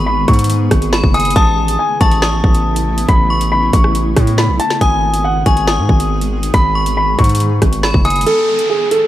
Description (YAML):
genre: hip hop, drill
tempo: 139 BPM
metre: 4/4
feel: half-time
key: G# phrygian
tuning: A4 = 440 Hz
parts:
  - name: dark baby grand piano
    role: melody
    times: 0.0-9.1 s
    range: G#4 to D#6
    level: -16 LUFS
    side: equal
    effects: low-pass filter, ping-pong delay
  - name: metallic FM bell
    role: second line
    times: 0.0-8.3 s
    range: G#5 to D#6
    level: -23 LUFS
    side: left 2 dB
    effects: chorus, ping-pong delay
  - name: granular cloud pad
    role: sustained chords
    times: 0.0-8.2 s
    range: C#3 to G#4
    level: -22 LUFS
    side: equal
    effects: built-in reverb
  - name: distorted 808-style bass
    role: bass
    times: 0.0-8.3 s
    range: F#1 to A2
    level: -16 LUFS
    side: equal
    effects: distortion
  - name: drill drum kit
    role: drums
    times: 0.3-9.0 s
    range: hi-hat, kick drum, rim click, snare drum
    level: -14 LUFS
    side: equal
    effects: none
  - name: downlifter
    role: sound effects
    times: 8.3-9.1 s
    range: none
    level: -22 LUFS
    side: right 1 dB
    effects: none
room: digital ambience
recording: vinyl crackle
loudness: -11 LUFS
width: side -13 dB against mid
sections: 0.0-8.3 A section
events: kick muted 8.3-9.1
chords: 0.0 G#m; 1.4 Aadd9; 4.8 G#m; 8.3 N.C.